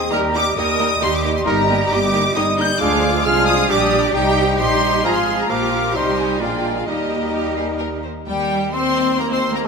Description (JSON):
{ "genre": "quick classical-period movement for symphony orchestra", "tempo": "133 BPM", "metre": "3/4", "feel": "straight", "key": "Eb major", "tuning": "A4 = 441 Hz", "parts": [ { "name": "rich studio violin section", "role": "melody", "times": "0.0-9.7 s", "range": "Eb5 to G6", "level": "-24 LUFS", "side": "left 2 dB", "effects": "none" }, { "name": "mellow concert flute", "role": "second line", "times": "0.0-9.7 s", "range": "Eb5 to G6", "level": "-25 LUFS", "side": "left 2 dB", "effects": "none" }, { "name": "mellow cor anglais", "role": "second line", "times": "0.0-9.7 s", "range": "G3 to F5", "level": "-27 LUFS", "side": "right 2 dB", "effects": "none" }, { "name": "mellow bassoon", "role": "accompaniment", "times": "0.0-8.0 s", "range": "F3 to C4", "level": "-25 LUFS", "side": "right 2 dB", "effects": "none" }, { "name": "rich studio cello section", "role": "bass", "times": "0.0-9.7 s", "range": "G3 to Bb4", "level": "-26 LUFS", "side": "right 2 dB", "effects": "none" }, { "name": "rich studio double bass section", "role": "bass", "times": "0.0-9.7 s", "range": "G1 to Eb2", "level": "-24 LUFS", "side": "right 4 dB", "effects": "none" }, { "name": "clear studio violin section", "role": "second line", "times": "0.1-9.7 s", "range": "F4 to F5", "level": "-27 LUFS", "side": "left 1 dB", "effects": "none" }, { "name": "rich studio viola section", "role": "accompaniment", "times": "0.1-9.7 s", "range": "F3 to F4", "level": "-25 LUFS", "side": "right 1 dB", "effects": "none" }, { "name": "mellow French horn section", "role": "sustained chords", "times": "0.1-9.7 s", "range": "F3 to F4", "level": "-26 LUFS", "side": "left 5 dB", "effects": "none" }, { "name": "mellow trumpet", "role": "stabs", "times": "0.1-8.0 s", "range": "G4 to C5", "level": "-27 LUFS", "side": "equal", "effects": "none" } ], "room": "moderate scoring stage reverb, RT60 1.9 s", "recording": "none", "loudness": "-15 LUFS", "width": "side -5 dB against mid", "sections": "0.0-8.3 A section; 8.3-9.7 A section", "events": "none", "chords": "0.1 Eb; 1.5 Eb/G; 2.8 Ddim; 3.7 Gm/Bb; 4.1 Cm; 5.0 Fm/Ab; 5.5 Bb; 6.0 Cm; 6.4 Bb7; 6.9 Eb", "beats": "| 0.12 0.57 1.01 | 1.47 1.91 2.36 | 2.81 3.25 3.69 | 4.14 4.59 5.05 | 5.50 5.95 6.41 | 6.88 7.34 7.81 | 8.28 8.74 9.19 | 9.65" }